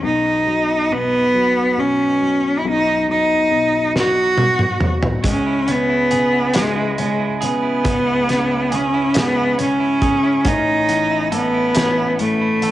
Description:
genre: six-eight pop ballad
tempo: 46 BPM (dotted quarters)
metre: 6/8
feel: straight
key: unclear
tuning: A4 = 441 Hz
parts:
  - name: rich cello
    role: melody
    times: 0.0-12.7 s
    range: G#3 to F#4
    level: -16 LUFS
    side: equal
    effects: cassette tape, tape echo
  - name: felt-muted upright piano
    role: accompaniment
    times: 0.0-12.7 s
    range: A1 to F#3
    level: -25 LUFS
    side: left 5 dB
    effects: none
  - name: loose indie drum kit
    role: drums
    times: 4.0-12.7 s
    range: hi-hat, kick drum, snare drum, toms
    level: -21 LUFS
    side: equal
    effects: cassette tape
  - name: clean electric guitar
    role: arpeggios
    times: 5.2-12.7 s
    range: G#3 to A4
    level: -24 LUFS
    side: right 7 dB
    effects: none
room: light reverb, studio reverb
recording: home recording on cassette, nothing above 11.0 kHz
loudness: -15 LUFS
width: side -14 dB against mid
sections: 0.0-12.7 A section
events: drum fill 3.9-5.2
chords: 0.0 B; 5.2 C#m; 10.5 A

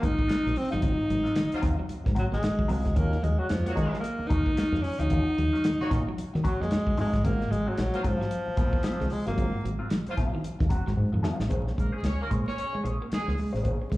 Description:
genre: funk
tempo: 112 BPM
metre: 4/4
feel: swing 60% on 16ths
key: unclear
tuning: A4 = 439 Hz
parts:
  - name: breathy alto saxophone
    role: melody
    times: 0.0-9.8 s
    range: F3 to Eb4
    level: -29 LUFS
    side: equal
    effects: slapback echo
  - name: mellow electric guitar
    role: accompaniment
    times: 0.0-13.9 s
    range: Gb3 to C5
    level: -36 LUFS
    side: left 2 dB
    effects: wah, spring reverb, slapback echo
  - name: clean electric guitar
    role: riff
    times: 0.0-14.0 s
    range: Eb3 to Bb3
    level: -35 LUFS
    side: right 2 dB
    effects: harmonic tremolo, slapback echo
  - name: fingered electric bass with an envelope filter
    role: bass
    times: 0.0-14.0 s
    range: F1 to Eb3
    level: -28 LUFS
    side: equal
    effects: none
  - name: warm soul drum kit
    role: drums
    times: 0.0-14.0 s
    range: hi-hat, kick drum, snare drum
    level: -29 LUFS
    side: equal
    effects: none
  - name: warm horn section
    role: second line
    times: 1.5-13.3 s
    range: Gb3 to Db5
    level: -36 LUFS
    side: equal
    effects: slapback echo
room: small room ambience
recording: live gig heard through the venue's PA, club reverb, vinyl crackle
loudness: -24 LUFS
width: side -18 dB against mid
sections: 0.0-11.5 A section; 11.5-14.0 B section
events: drum fill 11.0-11.5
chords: 0.0 Ab13; 3.0 Ebm9; 7.2 Ab13; 11.5 Bbm9

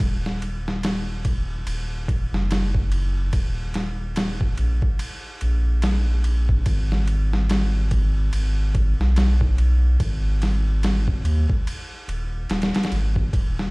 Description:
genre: trip hop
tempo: 72 BPM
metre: 4/4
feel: swing 59% on 16ths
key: Eb minor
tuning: A4 = 438 Hz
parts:
  - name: round analog bass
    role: bass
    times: 0.0-13.7 s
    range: Eb1 to Eb2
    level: -21 LUFS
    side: equal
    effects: none
  - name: boom bap sampler-style drum kit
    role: drums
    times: 0.0-13.7 s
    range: kick drum, ride cymbal, snare drum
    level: -24 LUFS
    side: equal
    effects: overdrive
room: little or no reverb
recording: played on a big sound system in a bare room, large studio reverb, vinyl crackle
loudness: -20 LUFS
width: side -28 dB against mid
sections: 0.0-13.7 A section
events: none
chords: none

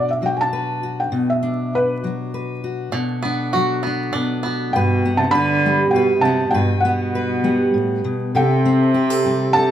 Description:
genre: folk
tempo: 100 BPM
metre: 3/4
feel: straight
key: G major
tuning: A4 = 440 Hz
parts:
  - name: felt-muted upright piano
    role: melody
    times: 0.0-9.7 s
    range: B4 to B5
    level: -21 LUFS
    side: equal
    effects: none
  - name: fingerpicked steel-string acoustic guitar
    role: accompaniment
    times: 0.0-9.7 s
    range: G2 to B4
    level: -20 LUFS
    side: left 1 dB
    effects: none
  - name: bluegrass banjo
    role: arpeggios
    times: 2.9-4.8 s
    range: D3 to F#4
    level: -23 LUFS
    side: right 3 dB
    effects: none
  - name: warm cello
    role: second line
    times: 4.7-9.7 s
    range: B2 to D3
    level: -20 LUFS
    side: right 2 dB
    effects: none
room: moderate spring reverb, RT60 1.3 s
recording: minimal, uncompressed stereo recording, vinyl crackle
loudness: -17 LUFS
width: side -10 dB against mid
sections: 0.0-2.9 A section; 2.9-4.7 B section; 4.7-9.7 C section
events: felt piano solo 0.0-2.9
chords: 0.0 Bm; 4.7 Gmaj7; 8.3 C5

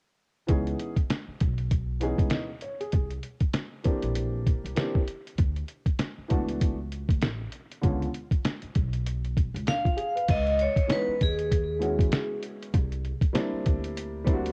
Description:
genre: hip hop, jazz-hop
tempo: 98 BPM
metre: 4/4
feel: swing 59% on 16ths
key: unclear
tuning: A4 = 440 Hz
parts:
  - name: dark grand piano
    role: accompaniment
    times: 0.5-14.5 s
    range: D3 to D#5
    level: -34 LUFS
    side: equal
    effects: cassette tape
  - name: upright bass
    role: bass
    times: 0.5-14.5 s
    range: A1 to D#2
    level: -34 LUFS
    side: equal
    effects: none
  - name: lo-fi sampler-style drum kit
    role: drums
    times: 0.5-14.5 s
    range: crash cymbal, hi-hat, kick drum, snare drum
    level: -28 LUFS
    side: equal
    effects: cassette tape
  - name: vibraphone with hard mallets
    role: melody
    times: 9.7-12.4 s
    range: G#4 to E#5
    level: -30 LUFS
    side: equal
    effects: cassette tape, tape echo
room: small room ambience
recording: home recording on cassette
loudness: -28 LUFS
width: mono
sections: 0.5-10.3 A section; 10.3-14.5 B section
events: none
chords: 0.5 C#m9; 2.9 C9; 5.4 D69; 7.8 C#7b9; 10.3 C#m9; 12.7 C9

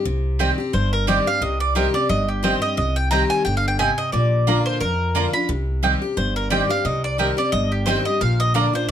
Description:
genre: bluegrass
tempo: 177 BPM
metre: 4/4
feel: swing 56% on 8ths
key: C minor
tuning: A4 = 441 Hz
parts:
  - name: picked steel-string acoustic guitar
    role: accompaniment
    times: 0.0-8.9 s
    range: F2 to G4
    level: -23 LUFS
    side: left 2 dB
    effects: none
  - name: upright bass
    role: bass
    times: 0.1-8.9 s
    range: G1 to F2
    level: -23 LUFS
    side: equal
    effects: none
  - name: mandolin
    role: stabs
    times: 0.4-8.7 s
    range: Bb3 to Bb5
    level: -23 LUFS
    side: right 6 dB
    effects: none
  - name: mandolin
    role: melody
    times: 0.7-8.9 s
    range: G4 to B5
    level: -22 LUFS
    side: right 1 dB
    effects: none
room: light reverb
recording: close, detailed microphones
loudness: -18 LUFS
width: side -9 dB against mid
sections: 0.1-8.9 A section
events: none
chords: 0.1 Cm; 4.1 Bb; 5.5 Cm; 8.2 Bb

